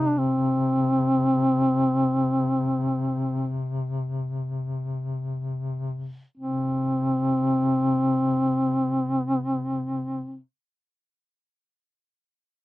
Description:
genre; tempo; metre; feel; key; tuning
caucasian folk, Caucasian lament; free time; none; none; unclear; A4 = 443 Hz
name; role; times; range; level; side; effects
mellow duduk; melody; 0.0-10.4 s; C4 to D4; -22 LUFS; equal; none
mellow duduk; drone; 0.0-10.4 s; C3; -28 LUFS; left 2 dB; stereo widening
room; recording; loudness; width
light reverb; dry, close 1970s-style studio recording; -22 LUFS; side -16 dB against mid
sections
0.0-6.4 A section; 6.4-11.8 B section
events
slowing down 0.0-6.4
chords
none

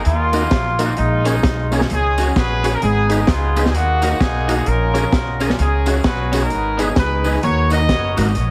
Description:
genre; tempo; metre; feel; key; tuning
ska; 130 BPM; 4/4; swing 62% on 8ths; unclear; A4 = 439 Hz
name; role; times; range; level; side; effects
clear horn section; melody; 0.0-8.3 s; G#3 to D#5; -22 LUFS; equal; dub echo, plate reverb
upright bass; bass; 0.1-8.5 s; F#1 to D#2; -21 LUFS; equal; none
crunchy breakbeat drum kit; drums; 0.1-8.5 s; hi-hat, kick drum, snare drum; -23 LUFS; equal; none
electric guitar at the edge of break-up; accompaniment; 0.3-8.4 s; A#3 to G#4; -29 LUFS; equal; lush chorus, plate reverb
overdriven tonewheel organ; stabs; 0.3-8.3 s; A#3 to B4; -28 LUFS; equal; chorus vibrato, fast rotary speaker, dub echo, plate reverb
tambourine; percussion; 0.3-8.3 s; none; -40 LUFS; equal; none
room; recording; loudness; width
light reverb; heavily compressed radio sound, multiband compression; -17 LUFS; mono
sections
0.0-8.5 A section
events
none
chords
0.1 D#m; 1.0 A#m7; 1.9 C#sus4; 2.8 G#m; 3.7 D#m; 4.7 A#m7; 5.6 C#sus4; 6.5 G#m; 7.4 D#m

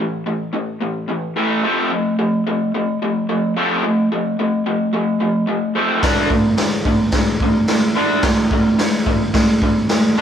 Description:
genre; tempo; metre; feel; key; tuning
garage rock duo or trio; 109 BPM; 4/4; straight; unclear; A4 = 440 Hz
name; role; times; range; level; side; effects
raw garage guitar; riff; 0.0-10.2 s; A2 to D4; -16 LUFS; equal; overdrive
raw garage drum kit; drums; 6.0-10.0 s; hi-hat, kick drum, snare drum; -18 LUFS; equal; none
room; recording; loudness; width
moderate stone room reverb, RT60 1.2 s; band playing live in one room; -15 LUFS; side -8 dB against mid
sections
0.0-10.2 A section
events
none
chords
0.0 A5; 1.6 F; 6.0 D5

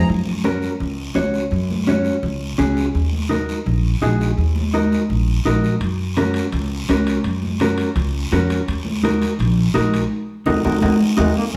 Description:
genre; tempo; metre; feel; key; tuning
latin, cumbia; 168 BPM; 4/4; straight; Eb minor; A4 = 440 Hz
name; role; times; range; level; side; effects
accordion; melody; 0.0-0.1, 11.2-11.6 s; Ab3 to Bb3; -28 LUFS; equal; light tremolo tuning
upright bass; bass; 0.0-11.3 s; Bb1 to Gb2; -23 LUFS; equal; none
guiro; percussion; 0.1-11.6 s; none; -36 LUFS; equal; none
congas; percussion; 0.3-11.3 s; none; -25 LUFS; equal; none
mellow electric guitar; accompaniment; 0.4-11.3 s; Db4 to Db5; -24 LUFS; equal; none
timbales; percussion; 5.8-11.3 s; none; -32 LUFS; equal; none
room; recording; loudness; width
wet large studio reverb, RT60 1.1 s; band playing live in one room; -19 LUFS; mono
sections
0.1-11.5 A section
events
band accent 10.1-11.5; drum fill 11.0-11.5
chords
0.1 Gb5; 3.0 Ebm; 5.8 Gb; 8.7 Ebm

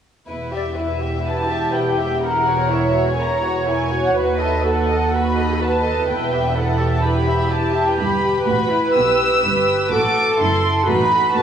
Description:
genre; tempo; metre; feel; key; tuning
quick classical-period movement for string orchestra; 124 BPM; 4/4; rubato; E minor; A4 = 440 Hz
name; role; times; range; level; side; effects
warm symphonic violin section; second line; 0.3-11.4 s; D#4 to E5; -23 LUFS; left 1 dB; none
warm symphonic cello section; bass; 0.3-11.4 s; D#2 to A3; -26 LUFS; right 3 dB; none
warm symphonic double bass section; bass; 0.3-11.4 s; E1 to A2; -25 LUFS; right 2 dB; none
dark studio violin section; melody; 0.5-11.4 s; D5 to E6; -22 LUFS; left 1 dB; none
warm studio viola section; accompaniment; 1.3-11.4 s; F#4 to C#5; -21 LUFS; right 1 dB; none
room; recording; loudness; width
moderate concert hall reverb, RT60 2.3 s; small room reverb; -16 LUFS; side -8 dB against mid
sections
0.3-11.4 A section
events
none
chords
0.3 Em; 2.2 F#7/E; 4.2 B7/D#; 6.1 Em; 8.0 Em/G; 9.9 F#dim/A; 10.9 B7/A

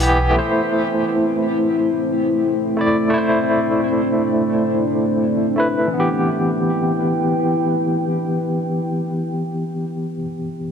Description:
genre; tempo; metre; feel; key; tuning
trip hop; 86 BPM; 4/4; swing 57% on 16ths; E minor; A4 = 440 Hz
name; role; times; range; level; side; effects
barky tine electric piano; accompaniment; 0.0-10.7 s; E3 to D5; -19 LUFS; equal; overdrive, tremolo, tape echo
deep dark ambient pad; sustained chords; 0.0-9.5 s; A3 to G5; -21 LUFS; left 1 dB; chorus, built-in reverb, vintage 12-bit sampler grit
room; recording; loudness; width
moderate lush hall reverb, RT60 2.2 s; heavily compressed radio sound, multiband compression; -17 LUFS; side -7 dB against mid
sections
0.0-5.9 A section; 5.9-8.7 B section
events
none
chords
0.3 Am; 5.9 Em

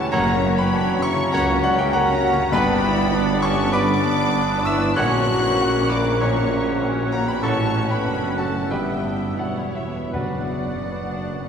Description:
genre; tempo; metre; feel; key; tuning
classical; 77-102 BPM; 4/4; rubato; unclear; A4 = 440 Hz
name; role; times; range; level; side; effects
clear baby grand piano; melody; 0.0-11.5 s; E2 to F#6; -23 LUFS; left 2 dB; none
clear studio violin section; melody; 0.0-11.5 s; E5 to F#6; -34 LUFS; left 3 dB; none
hollow concert flute; second line; 0.0-11.5 s; C#5 to C#6; -30 LUFS; left 1 dB; none
rich studio violin section; second line; 0.0-11.5 s; E5 to F#6; -33 LUFS; left 2 dB; none
rich studio viola section; accompaniment; 0.0-11.5 s; C#3 to D5; -31 LUFS; right 1 dB; none
warm bassoon; accompaniment; 0.0-11.5 s; A#3 to F#4; -28 LUFS; right 2 dB; none
mellow French horn section; sustained chords; 0.0-11.5 s; E3 to F#4; -29 LUFS; left 2 dB; none
bright clarinet; second line; 0.1-11.5 s; B3 to C#4; -31 LUFS; equal; none
clear oboe; second line; 0.1-11.5 s; C#5 to F#5; -33 LUFS; right 1 dB; none
mellow trombone section; sustained chords; 0.1-10.4 s; none; barely audible; none; none
warm trumpet; stabs; 0.1-10.4 s; A4 to C#5; -32 LUFS; right 1 dB; none
clear tuba; bass; 0.1-11.5 s; E1 to C#2; -31 LUFS; right 1 dB; none
rich studio double bass section; bass; 0.1-11.5 s; E1 to C#2; -29 LUFS; right 2 dB; none
warm studio cello section; bass; 0.1-11.5 s; C#2 to A#2; -30 LUFS; right 3 dB; none
timpani; percussion; 10.1-11.2 s; F#2; -32 LUFS; right 1 dB; none
room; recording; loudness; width
wet cathedral reverb, RT60 4.0 s; recorded in a church or concert hall; -18 LUFS; side -7 dB against mid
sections
0.0-11.5 A section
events
none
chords
0.1 F#; 2.5 G; 5.0 F#/A#; 7.4 F#m/A; 8.7 Em/G; 10.1 Bm/F#

